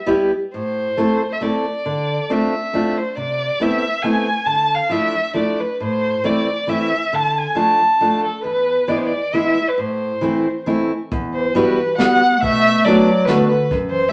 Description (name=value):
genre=musette waltz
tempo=136 BPM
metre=3/4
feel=straight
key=A harmonic minor, E minor from 11.1 s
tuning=A4 = 440 Hz
part: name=dark violin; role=melody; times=0.0-14.1 s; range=A4 to A5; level=-21 LUFS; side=equal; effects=none
part: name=fingerpicked steel-string acoustic guitar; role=accompaniment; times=0.1-14.0 s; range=E2 to A4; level=-22 LUFS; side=equal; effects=none
part: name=vintage brush drum kit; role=drums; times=11.1-13.8 s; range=hi-hat, kick drum, snare drum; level=-27 LUFS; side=equal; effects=none
part: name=mellow clarinet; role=second line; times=11.3-14.1 s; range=D3 to B3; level=-22 LUFS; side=equal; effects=none
room=wet studio reverb, RT60 0.8 s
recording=none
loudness=-18 LUFS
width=mono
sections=0.5-11.1 A section; 11.1-14.1 B section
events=none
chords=0.0 Em; 0.5 Am; 1.9 Dm7; 3.2 Amadd9/C; 4.5 Dmadd9; 5.8 Am; 7.1 Dm; 8.4 E; 9.8 Am; 11.1 Emadd9; 12.4 Bm7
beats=0.07 | 0.52 0.96 1.41 | 1.85 2.29 2.73 | 3.17 3.60 4.03 | 4.47 4.92 5.36 | 5.81 6.25 6.69 | 7.13 7.57 8.01 | 8.45 8.88 9.33 | 9.78 10.22 10.67 | 11.12 11.56 11.99 | 12.42 12.86 13.28 | 13.71